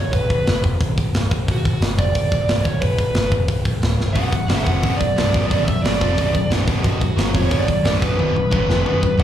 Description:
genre	heavy metal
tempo	179 BPM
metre	4/4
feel	straight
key	B minor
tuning	A4 = 439 Hz
part	bluesy overdriven lead guitar	melody	0.0-9.2 s	F#4 to F#5	-23 LUFS	right 1 dB	distortion, ping-pong delay
part	modern bright picked electric bass	bass	0.0-9.2 s	B0 to F#1	-21 LUFS	equal	none
part	tight metal drum kit	drums	0.1-9.2 s	hi-hat, kick drum, snare drum, toms	-21 LUFS	equal	none
part	distorted electric guitar	riff	4.1-9.2 s	B1 to F#3	-25 LUFS	left 11 dB	overdrive, slapback echo
part	distorted electric guitar	riff	4.1-9.2 s	B1 to F#3	-25 LUFS	right 9 dB	overdrive
room	little or no reverb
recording	live gig heard through the venue's PA, club reverb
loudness	-16 LUFS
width	side -10 dB against mid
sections	0.0-9.2 A section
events	drum fill 4.0, 8.2-9.2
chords	0.0 Bm

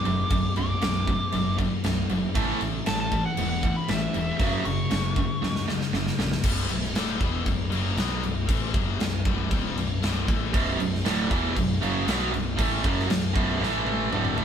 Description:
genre	hard rock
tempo	117 BPM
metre	4/4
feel	straight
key	B minor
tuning	A4 = 440 Hz
part	bluesy overdriven lead guitar	melody	0.0-5.6 s	E5 to D6	-30 LUFS	equal	distortion
part	overdriven electric guitar	riff	0.0-6.4, 10.5-14.4 s	B1 to B3	-28 LUFS	right 6 dB	none
part	scooped high-gain guitar	riff	0.0-14.4 s	B1 to B3	-30 LUFS	left 6 dB	distortion
part	fuzz picked electric bass	bass	0.1-14.4 s	B0 to C#2	-30 LUFS	equal	overdrive
part	huge arena drum kit	drums	0.1-14.4 s	crash cymbal, kick drum, snare drum, toms	-28 LUFS	equal	none
room	moderate stone room reverb, RT60 0.9 s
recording	band playing live in one room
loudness	-23 LUFS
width	side -8 dB against mid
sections	0.0-6.4 A section; 6.4-14.4 B section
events	lead electric guitar solo 0.0-6.4; drum fill 5.4-6.4, 13.6-14.4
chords	0.0 Bm; 2.4 A5; 4.4 F#5; 6.4 Bm; 13.6 A5

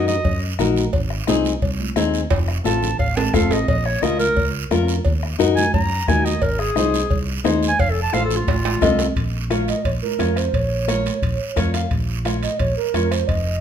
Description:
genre	latin, cumbia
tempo	175 BPM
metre	4/4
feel	straight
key	Bb minor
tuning	A4 = 441 Hz
part	mellow clarinet	melody	0.0-0.4, 2.7-9.1 s	F4 to Bb5	-22 LUFS	right 1 dB	none
part	nylon-string guitar	accompaniment	0.0-13.2 s	C4 to F5	-22 LUFS	left 7 dB	none
part	fingered electric bass	bass	0.0-13.6 s	F1 to Gb2	-23 LUFS	equal	none
part	congas	percussion	0.1-13.1 s	none	-28 LUFS	right 5 dB	none
part	guiro	percussion	0.1-13.6 s	none	-32 LUFS	right 7 dB	none
part	bombo	percussion	0.2-13.5 s	none	-24 LUFS	left 2 dB	none
part	cowbell and timbales	percussion	0.2-13.5 s	none	-28 LUFS	right 4 dB	none
part	bright bass ocarina	second line	9.5-13.6 s	Bb4 to F5	-24 LUFS	right 6 dB	none
room	moderate large studio reverb, RT60 1.1 s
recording	minimal, uncompressed stereo recording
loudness	-17 LUFS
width	side -9 dB against mid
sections	0.0-9.2 A section; 9.2-13.6 B section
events	clarinet solo 0.0-9.2; drum fill 2.3-3.7, 8.5-9.2; ocarina solo 9.2-13.6; nylon-string guitar fill 11.4-11.9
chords	0.0 Ebm; 0.9 Ab; 2.3 F; 3.7 Bbm; 5.1 Ebm; 6.4 Ab; 7.8 F7; 9.2 Bbm

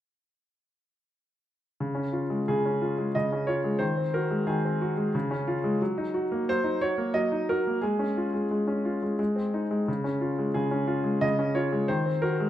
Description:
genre	classical-period piano sonatina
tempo	89 BPM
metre	3/4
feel	straight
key	Db major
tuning	A4 = 441 Hz
part	bright baby grand piano	solo	1.8-12.5 s	Db3 to Eb5	-25 LUFS	equal	none
room	moderate recital hall reverb, RT60 1.4 s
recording	minimal, uncompressed stereo recording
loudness	-25 LUFS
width	side -12 dB against mid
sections	1.8-12.5 A section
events	none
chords	1.8 Db; 3.8 Ab7/Eb; 5.1 Db; 5.8 Ebm/Gb; 7.8 Db/Ab; 9.2 Ab; 9.9 Db; 11.9 Ab7/Eb

